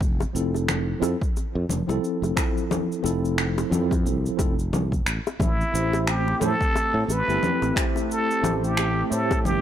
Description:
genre	sunset chillout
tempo	89 BPM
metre	4/4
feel	swing 58% on 16ths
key	unclear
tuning	A4 = 441 Hz
part	sustaining fretless electric bass	bass	0.0-9.6 s	F1 to A2	-26 LUFS	equal	none
part	electronic cabasa, finger snaps and congas	drums	0.0-9.6 s	none	-28 LUFS	equal	none
part	electronic kick drum	drums	0.0-9.4 s	none	-26 LUFS	equal	overdrive
part	bongos	percussion	0.2-9.4 s	none	-32 LUFS	left 6 dB	none
part	tine electric piano	accompaniment	0.3-9.6 s	F3 to C5	-28 LUFS	moving between left 2 dB and right 5 dB	medium stereo tremolo, auto-pan, analog delay
part	trumpet with plunger mute	melody	5.4-9.6 s	E4 to B4	-25 LUFS	equal	analog delay
part	airy breathy pad	sustained chords	5.4-9.6 s	A3 to G4	-31 LUFS	equal	chorus
room	light reverb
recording	dry, gritty hardware recording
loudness	-21 LUFS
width	side -10 dB against mid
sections	0.0-9.6 A section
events	none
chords	0.0 Fmaj7; 5.4 Am7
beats	| 0.01 0.69 1.36 2.03 | 2.71 3.38 4.06 4.73 | 5.41 6.08 6.75 7.43 | 8.10 8.78 9.45

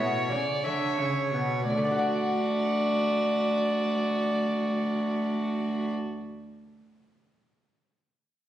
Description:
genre	classical, baroque-style sonata movement with continuo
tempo	56 BPM (dotted quarters)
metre	12/8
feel	straight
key	D major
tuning	A4 = 440 Hz
part	warm violin	melody	0.0-5.9 s	F#4 to E5	-35 LUFS	left 1 dB	none
part	warm violin	second line	0.0-5.9 s	C#5 to D5	-29 LUFS	right 1 dB	none
part	lute	accompaniment	0.0-6.2 s	B2 to D5	-32 LUFS	left 2 dB	none
part	rich cello	bass	0.0-5.9 s	D2 to D3	-29 LUFS	right 1 dB	none
room	wet recital hall reverb, RT60 1.5 s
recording	recorded on a phone in the room, studio reverb, compression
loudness	-25 LUFS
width	side -12 dB against mid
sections	0.0-1.7 A section; 1.7-6.0 B section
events	slowing down 0.0-1.7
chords	0.0 A7; 1.7 D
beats	0.62 | 1.68 2.76 3.84 4.92

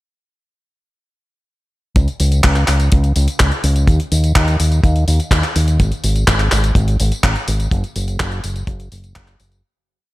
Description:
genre	italo disco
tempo	125 BPM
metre	4/4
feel	straight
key	unclear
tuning	A4 = 440 Hz
part	fingered electric bass with an envelope filter	bass	2.0-9.6 s	F#1 to D#2	-15 LUFS	equal	tube saturation
part	gated 80s digital drum machine	drums	2.0-9.6 s	handclaps, hi-hat, tambourine	-20 LUFS	equal	gated reverb
part	kick drum	drums	2.0-9.3 s	none	-14 LUFS	equal	none
room	little or no reverb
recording	none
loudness	-13 LUFS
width	side -18 dB against mid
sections	2.0-9.6 chorus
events	fade-out 7.1-9.6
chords	none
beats	| 1.96 2.44 2.92 3.40 | 3.88 4.36 4.84 5.32 | 5.80 6.28 6.76 7.24 | 7.72 8.20 8.68 9.16

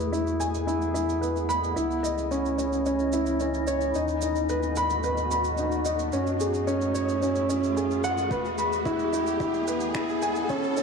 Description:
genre	piano and strings electronica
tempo	110 BPM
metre	4/4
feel	straight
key	E major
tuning	A4 = 437 Hz
part	granular cloud pad	sustained chords	0.0-10.8 s	A3 to D#5	-32 LUFS	left 1 dB	built-in reverb
part	dark upright piano	riff	0.0-10.8 s	C#4 to B5	-26 LUFS	equal	ping-pong delay
part	warm sub bass	bass	0.0-10.8 s	C#2 to F#2	-34 LUFS	equal	sidechain pumping
part	electronic shaker and finger snaps	drums	0.0-10.8 s	none	-40 LUFS	right 5 dB	high-pass filter on perc, high-pass filter on snare, high-pass filter on room
part	riser	sound effects	1.9-10.8 s	none	-37 LUFS	right 1 dB	none
part	electronic kick drum	drums	8.3-10.6 s	none	-37 LUFS	equal	none
room	wet scoring stage reverb, RT60 1.6 s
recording	dark, warm production, high-pass filter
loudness	-24 LUFS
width	side -5 dB against mid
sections	0.0-10.8 A section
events	build-up 0.0-10.8; riser 1.9-10.8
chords	0.0 E; 1.8 C#madd9; 4.0 B/D#; 6.1 F#madd9; 8.3 E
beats	0.13 0.68 1.23 | 1.77 2.32 2.86 3.41 | 3.95 4.50 5.04 5.59 | 6.13 6.68 7.22 7.77 | 8.32 8.86 9.41 9.95 | 10.50

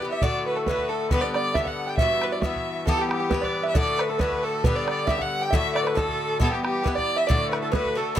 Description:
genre	celtic folk, Celtic polka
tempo	136 BPM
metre	2/4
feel	swing 54% on 8ths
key	unclear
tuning	A4 = 440 Hz
part	rich fiddle	melody	0.0-8.2 s	G4 to G5	-27 LUFS	equal	none
part	musette accordion	second line	0.0-8.2 s	G4 to G5	-33 LUFS	equal	none
part	open-back banjo	second line	0.0-8.2 s	G4 to G5	-31 LUFS	right 6 dB	none
part	Irish bouzouki	accompaniment	0.0-8.2 s	G2 to G4	-27 LUFS	left 3 dB	none
part	bodhran	percussion	0.2-8.2 s	none	-25 LUFS	right 1 dB	none
room	light reverb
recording	close, detailed microphones, faint mains hum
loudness	-22 LUFS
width	side -10 dB against mid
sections	0.0-2.9 A section; 2.9-8.2 A section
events	none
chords	0.2 D; 1.1 G; 2.0 Emadd9; 2.9 Em; 3.8 D; 4.6 G; 5.5 D; 6.4 Em; 7.3 D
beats	| 0.22 0.66 | 1.10 1.55 | 1.99 2.43 | 2.87 3.31 | 3.75 4.20 | 4.64 5.08 | 5.52 5.96 | 6.40 6.84 | 7.28 7.72 | 8.16

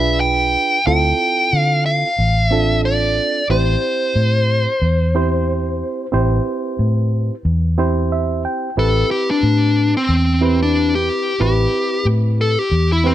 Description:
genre	straight-eighth soul blues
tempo	91 BPM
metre	4/4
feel	swing 55% on 16ths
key	A minor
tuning	A4 = 438 Hz
part	dark smooth lead guitar	melody	0.0-13.1 s	C4 to G5	-18 LUFS	left 1 dB	overdrive
part	reed electric piano	accompaniment	0.0-13.1 s	C4 to G5	-22 LUFS	right 4 dB	none
part	vintage muted fingered electric bass	bass	0.0-13.1 s	A1 to D3	-17 LUFS	left 1 dB	none
room	little or no reverb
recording	none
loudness	-15 LUFS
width	side -12 dB against mid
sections	0.0-8.8 A section; 8.8-13.1 B section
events	reed electric piano fill 7.8-8.8; lead electric guitar solo 8.8-13.1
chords	0.0 E7b9; 0.9 Dm7; 3.5 Am7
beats	0.21 | 0.86 1.52 2.18 2.84 | 3.50 4.16 4.82 5.48 | 6.13 6.79 7.45 8.11 | 8.77 9.43 10.09 10.74 | 11.40 12.06 12.72

